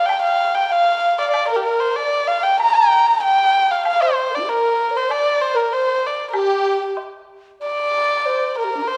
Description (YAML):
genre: chinese traditional, Chinese chamber ensemble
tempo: 95 BPM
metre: 2/4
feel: rubato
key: G yu mode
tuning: A4 = 440 Hz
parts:
  - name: dark erhu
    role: melody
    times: 0.0-9.0 s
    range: G4 to Bb5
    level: -21 LUFS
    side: equal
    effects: none
  - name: mellow large dizi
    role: second line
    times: 0.0-9.0 s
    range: D4 to Bb5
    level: -22 LUFS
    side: equal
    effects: none
  - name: woodblock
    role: percussion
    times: 0.1-7.1 s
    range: none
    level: -34 LUFS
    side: equal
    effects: none
room: moderate scoring stage reverb, RT60 1.8 s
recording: none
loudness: -18 LUFS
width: mono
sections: 0.0-7.6 A section; 7.6-9.0 B section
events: none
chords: none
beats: | 0.10 0.71 | 1.34 1.97 | 2.60 3.24 | 3.87 4.49 | 5.10 5.72 | 6.34 6.97 | 7.62 8.26 | 8.89